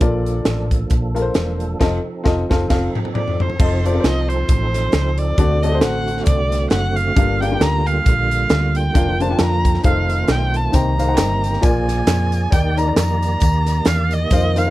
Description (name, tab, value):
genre	uptempo gospel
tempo	134 BPM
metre	4/4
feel	swing 56% on 8ths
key	unclear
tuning	A4 = 441 Hz
part	warm upright piano	accompaniment	0.0-14.7 s	G2 to Bb5	-22 LUFS	left 3 dB	none
part	percussive tonewheel organ	sustained chords	0.0-14.7 s	D3 to D5	-26 LUFS	right 4 dB	slow rotary speaker, overdrive, chorus vibrato
part	hollow-body short-scale fingered electric bass	bass	0.0-14.7 s	E1 to F2	-20 LUFS	equal	none
part	crisp fusion drum kit	drums	0.0-14.7 s	crash cymbal, hi-hat, kick drum, snare drum, toms	-19 LUFS	equal	none
part	warm erhu	melody	3.1-14.7 s	C5 to Bb5	-22 LUFS	right 1 dB	none
part	tambourine and handclaps	percussion	10.7-14.7 s	none	-32 LUFS	right 1 dB	none
room	little or no reverb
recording	none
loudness	-15 LUFS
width	side -16 dB against mid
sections	0.0-3.6 A section; 3.6-14.7 B section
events	drum fill 1.8-3.6; band accent 1.8-3.6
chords	0.0 Bbmaj7; 1.8 F7; 5.4 D7; 7.2 Gm7; 9.0 Bb/F; 9.8 F7; 10.7 Cm7; 11.6 Bb7; 12.5 Ebmaj7